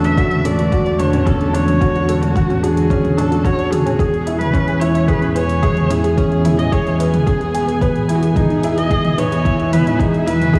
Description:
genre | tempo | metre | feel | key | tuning
piano and strings electronica | 110 BPM | 4/4 | straight | unclear | A4 = 438 Hz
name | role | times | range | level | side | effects
warm viola | melody | 0.0-10.6 s | F#4 to E5 | -24 LUFS | equal | tape echo, shimmer reverb
dark chamber string section | sustained chords | 0.0-10.6 s | D3 to G#5 | -25 LUFS | equal | sidechain pumping, shimmer reverb
warbly dusty pluck | arpeggios | 0.0-10.6 s | C#4 to G#5 | -31 LUFS | equal | none
felt-muted upright piano | riff | 0.0-10.6 s | C#4 to G#5 | -23 LUFS | equal | tape echo, shimmer reverb
dark chamber double bass section | bass | 0.0-10.6 s | E1 | -22 LUFS | equal | sidechain pumping
deep house drum kit | drums | 0.0-10.6 s | hi-hat, toms | -26 LUFS | equal | studio reverb
electronic kick drum | drums | 0.2-10.6 s | none | -22 LUFS | equal | studio reverb
room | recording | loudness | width
light reverb, studio reverb | none | -16 LUFS | mono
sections
0.0-10.6 A section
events
none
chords
0.0 Dmaj7/E; 4.0 C#m7/E; 8.4 Emaj7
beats
0.18 0.72 1.27 | 1.81 2.36 2.90 3.45 | 4.00 4.54 5.09 5.63 | 6.18 6.72 7.27 7.81 | 8.36 8.90 9.45 10.00 | 10.54

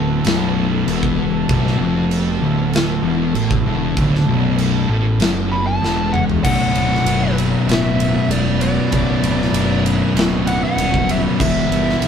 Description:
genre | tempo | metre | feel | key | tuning
stoner and doom metal | 97 BPM | 4/4 | straight | B minor | A4 = 438 Hz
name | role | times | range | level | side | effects
analog drone | sustained chords | 0.0-12.1 s | E3 to B4 | -30 LUFS | right 2 dB | chorus
thick fuzz guitar | riff | 0.0-12.1 s | B1 to E3 | -21 LUFS | left 8 dB | distortion
thick fuzz guitar | riff | 0.0-12.1 s | B1 to E3 | -20 LUFS | right 4 dB | distortion
fuzz picked electric bass | bass | 0.0-12.1 s | B0 to B1 | -23 LUFS | equal | overdrive
big rock drum kit | drums | 0.2-12.1 s | crash cymbal, kick drum, ride cymbal, snare drum, toms | -22 LUFS | equal | none
fuzz lead guitar | melody | 5.5-12.1 s | D5 to B5 | -22 LUFS | equal | distortion
tight distorted guitar | riff | 6.4-12.1 s | B1 to E4 | -27 LUFS | equal | distortion
room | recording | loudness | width
moderate studio ambience, RT60 0.5 s | band playing live in one room | -15 LUFS | side -7 dB against mid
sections
0.0-6.5 A section; 6.5-12.1 B section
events
drum fill 5.8-6.5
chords
0.0 Bm; 11.4 Em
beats
0.25 0.87 | 1.49 2.11 2.73 3.35 | 3.97 4.59 5.21 5.83 | 6.45 7.07 7.69 8.30 | 8.92 9.54 10.16 10.78 | 11.39 12.01

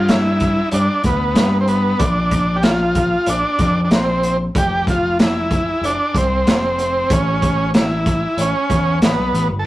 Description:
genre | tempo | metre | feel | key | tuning
psychedelic rock | 94 BPM | 4/4 | straight | unclear | A4 = 440 Hz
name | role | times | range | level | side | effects
combo organ | melody | 0.0-9.7 s | B3 to A4 | -18 LUFS | right 1 dB | none
overdriven picked electric bass | bass | 0.0-9.6 s | F1 to G2 | -20 LUFS | equal | none
crunchy breakbeat drum kit | drums | 0.1-9.5 s | hi-hat, kick drum, snare drum | -18 LUFS | equal | none
room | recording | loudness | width
wet small room reverb, RT60 0.5 s | rough rehearsal-room recording | -14 LUFS | side -16 dB against mid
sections
0.0-9.7 A section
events
none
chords
0.0 G5; 2.0 Bb5; 4.5 F5; 7.1 A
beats
0.09 0.72 1.36 | 2.00 2.63 3.27 3.90 | 4.54 5.18 5.82 6.46 | 7.09 7.74 8.37 9.01 | 9.65

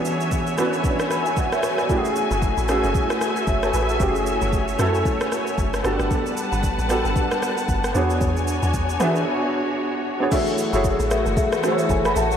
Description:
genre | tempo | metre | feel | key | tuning
amapiano | 114 BPM | 4/4 | swing 58% on 16ths | F# minor | A4 = 442 Hz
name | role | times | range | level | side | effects
warm concert grand piano | accompaniment | 0.0-12.4 s | E3 to B5 | -24 LUFS | right 1 dB | ensemble chorus
rich studio string section | sustained chords | 0.0-12.4 s | E3 to A5 | -25 LUFS | left 1 dB | sidechain pumping
smooth R&B drum kit | drums | 0.1-12.4 s | crash cymbal, kick drum, rim click, shaker | -26 LUFS | equal | none
deep log drum bass | bass | 2.3-12.4 s | F#1 to E3 | -24 LUFS | equal | none
marimba with soft mallets | stabs | 10.3-12.3 s | G#4 to E5 | -24 LUFS | left 4 dB | diffuse ambient delay
room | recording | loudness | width
wet cathedral reverb, RT60 4.9 s | dreamy mix soaked in reverb | -19 LUFS | side -8 dB against mid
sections
0.0-10.3 A section; 10.3-12.4 B section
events
break 9.3-10.3; drop 10.3-12.4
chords
0.0 E13; 1.9 F#m9; 5.8 Gmaj9; 7.9 E13; 10.3 F#m9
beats
0.32 0.84 1.37 | 1.90 2.42 2.95 3.48 | 4.00 4.53 5.05 5.58 | 6.11 6.63 7.16 7.69 | 8.21 8.74 9.27 9.79 | 10.32 10.84 11.37 11.90

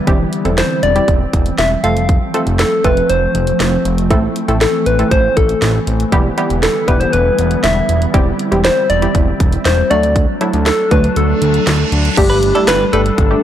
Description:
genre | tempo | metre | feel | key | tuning
synth-pop | 119 BPM | 4/4 | straight | G mixolydian | A4 = 440 Hz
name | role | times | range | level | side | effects
glassy FM pad | sustained chords | 0.0-13.4 s | D3 to E4 | -20 LUFS | equal | ensemble chorus, built-in reverb
wide unison pluck | accompaniment | 0.1-13.4 s | F#3 to A4 | -20 LUFS | right 1 dB | none
fat analog bass | bass | 0.1-13.4 s | E1 to D2 | -16 LUFS | equal | none
house drum kit | drums | 0.1-13.3 s | crash cymbal, handclaps, hi-hat, kick drum, snare drum | -17 LUFS | equal | none
soft struck synth lead | melody | 0.6-13.4 s | G4 to F5 | -16 LUFS | left 1 dB | chorus, analog delay
reverse cymbal and impact | sound effects | 11.3-13.4 s | none | -25 LUFS | right 4 dB | none
direct-recorded clean electric guitar | second line | 12.3-13.0 s | A4 to B4 | -21 LUFS | right 1 dB | spring reverb, analog delay
room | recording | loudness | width
light reverb, digital ambience | dry, gritty hardware recording | -11 LUFS | side -10 dB against mid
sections
0.0-12.2 A section; 12.2-13.4 B section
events
reverse cymbal 11.3-12.2; impact 12.2-13.4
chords
0.1 C/E; 1.8 F; 4.1 Am; 6.1 Em7; 8.1 C/E; 9.9 D; 12.2 Gsus2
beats
| 0.07 0.58 1.08 1.58 | 2.09 2.59 3.10 3.60 | 4.11 4.61 5.11 5.62 | 6.12 6.63 7.13 7.63 | 8.14 8.64 9.15 9.65 | 10.16 10.66 11.16 11.67 | 12.17 12.68 13.18

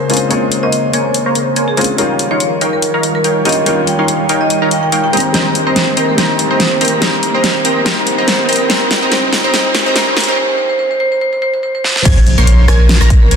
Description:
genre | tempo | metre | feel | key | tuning
future bass | 143 BPM | 4/4 | swing 55% on 16ths, half-time | unclear | A4 = 444 Hz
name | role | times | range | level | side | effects
felt-muted upright piano | accompaniment | 0.0-12.1 s | G3 to F4 | -20 LUFS | left 4 dB | sidechain pumping, tape echo
airy breathy pad | sustained chords | 0.0-10.4 s | Db3 to Db5 | -22 LUFS | equal | chorus, sidechain pumping
supersaw stab | riff | 0.0-13.4 s | Bb3 to C6 | -17 LUFS | right 1 dB | sidechain pumping, low-pass filter
riser and impact | sound effects | 0.5-13.4 s | none | -22 LUFS | right 2 dB | none
big-room dance drum kit | drums | 0.1-13.4 s | crash cymbal, hi-hat, rim click, snare drum | -16 LUFS | left 1 dB | soft clipping on snare, small room reverb
marimba with hard mallets | melody | 0.3-13.3 s | Ab4 to G5 | -18 LUFS | right 2 dB | sidechain pumping, tape echo
wide unison pluck | arpeggios | 12.1-13.4 s | Ab6 to C7 | -24 LUFS | right 1 dB | sidechain pumping
saturated sub bass | bass | 12.1-13.4 s | Bb1 | -9 LUFS | equal | sidechain pumping
electronic kick drum | drums | 12.1-13.2 s | none | -10 LUFS | equal | small room reverb
room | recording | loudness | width
moderate lush hall reverb, RT60 2.2 s | dense, heavily limited modern master, high-pass filter | -10 LUFS | side -6 dB against mid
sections
0.0-12.1 A section; 12.1-13.4 B section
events
build-up 0.0-12.1; filter sweep on supersaw synth 0.0-12.1; filter sweep 0.0-12.1; riser 0.5-10.4; drum fill 5.3-10.4, 11.8; break 10.4-12.1; drop 12.1-13.4; impact 12.1-13.4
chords
0.0 Bbm9; 2.0 Eb9; 5.1 Cm7; 8.7 Dbmaj7; 12.1 Bbm9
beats
| 0.31 0.73 1.15 1.56 | 1.99 2.40 2.82 3.24 | 3.66 4.08 4.50 4.92 | 5.34 5.76 6.18 6.60 | 7.02 7.44 7.86 8.28 | 8.70 9.12 9.54 9.96 | 10.38 10.80 11.21 11.63 | 12.05 12.47 12.89 13.31

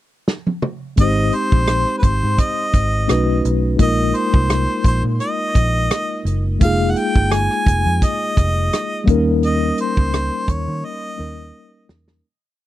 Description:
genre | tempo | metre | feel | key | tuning
lush 1970s-style soul | 85 BPM | 4/4 | swing 54% on 16ths | Ab major | A4 = 438 Hz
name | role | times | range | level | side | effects
warm soul drum kit | drums | 0.3-12.2 s | hi-hat, kick drum, rim click, snare drum, toms | -17 LUFS | right 1 dB | none
clear harmonica | melody | 1.0-11.9 s | Cb5 to Ab5 | -22 LUFS | equal | tape echo
mellow tine electric piano | accompaniment | 1.0-12.3 s | G3 to C5 | -21 LUFS | left 2 dB | medium stereo tremolo
vintage muted fingered electric bass | bass | 1.0-12.2 s | F1 to Eb3 | -19 LUFS | equal | none
room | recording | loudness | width
little or no reverb | none | -15 LUFS | side -14 dB against mid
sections
0.0-1.0 pickup bar; 1.0-12.2 verse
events
drum fill 0.3-1.0, 10.8-12.2; fade-out 9.4-12.2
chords
0.0 N.C.; 1.0 Abmaj7; 3.1 B9; 3.8 Bb7sus4; 6.6 Fm11; 9.1 Eb7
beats
0.28 | 0.98 1.69 2.39 3.09 | 3.80 4.50 5.20 5.91 | 6.61 7.31 8.02 8.72 | 9.42 10.13 10.83 11.53

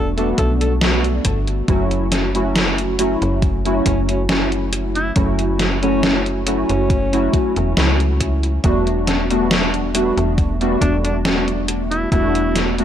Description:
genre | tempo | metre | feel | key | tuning
vaporwave | 69 BPM | 4/4 | straight | unclear | A4 = 439 Hz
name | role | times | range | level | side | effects
breathy alto saxophone | melody | 0.0-12.6 s | C#4 to A4 | -26 LUFS | equal | tape echo
warbly lo-fi synth keys | accompaniment | 0.0-12.8 s | F#3 to F#4 | -19 LUFS | equal | ensemble chorus, vintage 12-bit sampler grit, analog delay
slap-like FM bass | bass | 0.0-12.8 s | E1 to C#2 | -21 LUFS | equal | tube saturation
gated 80s digital drum machine | drums | 0.2-12.8 s | hi-hat, snare drum | -20 LUFS | equal | gated reverb, gated reverb snare, overdrive
electronic kick drum | drums | 0.4-12.3 s | none | -19 LUFS | equal | overdrive
room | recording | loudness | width
little or no reverb | dry, gritty hardware recording | -15 LUFS | side -10 dB against mid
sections
0.0-12.8 A section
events
none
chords
0.0 Em11; 1.7 F#m7; 8.6 Em11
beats
0.82 | 1.69 2.56 3.42 4.29 | 5.16 6.03 6.90 7.77 | 8.64 9.51 10.38 11.25 | 12.12

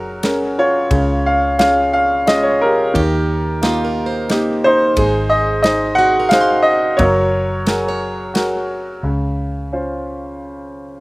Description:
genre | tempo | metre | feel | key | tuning
acoustic folk-pop ballad | 88 BPM | 3/4 | straight | Db major | A4 = 443 Hz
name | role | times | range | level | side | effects
clear baby grand piano | melody | 0.0-11.0 s | Db3 to Gb5 | -15 LUFS | equal | slapback echo
picked plugged-in swing-style acoustic guitar | arpeggios | 0.0-9.5 s | F4 to C6 | -24 LUFS | right 4 dB | slapback echo
vintage muted fingered electric bass | bass | 0.0-11.0 s | Gb1 to Eb2 | -23 LUFS | equal | none
natural country drum kit | drums | 0.2-8.5 s | kick drum, ride cymbal, snare drum | -20 LUFS | equal | none
room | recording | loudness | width
little or no reverb | recorded outdoors, with no room sound | -14 LUFS | side -23 dB against mid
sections
0.0-9.1 A section; 9.1-11.0 B section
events
none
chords
0.0 Gbadd9; 0.9 Db; 3.0 Eb; 5.0 Ab; 7.0 Gbadd9; 9.1 Dbmaj7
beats
0.24 | 0.92 1.60 2.28 | 2.96 3.64 4.31 | 4.98 5.65 6.32 | 7.00 7.68 8.36 | 9.05 9.73 10.42

